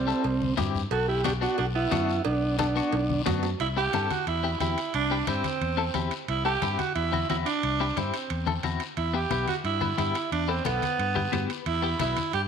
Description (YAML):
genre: latin, cumbia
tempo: 178 BPM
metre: 4/4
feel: straight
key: unclear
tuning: A4 = 442 Hz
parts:
  - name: combo organ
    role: melody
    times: 0.0-3.2 s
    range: C4 to A4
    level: -28 LUFS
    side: right 2 dB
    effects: none
  - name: raspy alto saxophone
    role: second line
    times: 0.0-12.4 s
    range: G3 to G4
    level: -29 LUFS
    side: right 6 dB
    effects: none
  - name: fingered electric bass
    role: bass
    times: 0.0-12.5 s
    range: B1 to G2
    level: -30 LUFS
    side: left 1 dB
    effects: none
  - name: clean electric guitar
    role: accompaniment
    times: 0.1-12.2 s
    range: B3 to B4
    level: -32 LUFS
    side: left 9 dB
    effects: tremolo
  - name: guiro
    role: percussion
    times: 0.1-12.5 s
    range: none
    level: -41 LUFS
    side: left 12 dB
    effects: none
  - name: congas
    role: percussion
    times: 0.2-12.5 s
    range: none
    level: -35 LUFS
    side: left 7 dB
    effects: none
  - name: cowbell and timbales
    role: percussion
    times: 0.2-12.5 s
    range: none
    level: -38 LUFS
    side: right 12 dB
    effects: none
room: moderate echo chamber reverb, RT60 1.6 s, studio reverb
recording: 1960s-style stereo with parts hard left and right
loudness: -24 LUFS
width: side -7 dB against mid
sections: 0.0-3.6 A section; 3.6-12.5 B section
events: drum fill 2.9-3.6; alto saxophone solo 3.6-12.5; clean electric guitar fill 11.2-11.7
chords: 0.0 C; 0.9 Bm; 3.6 C; 9.0 Em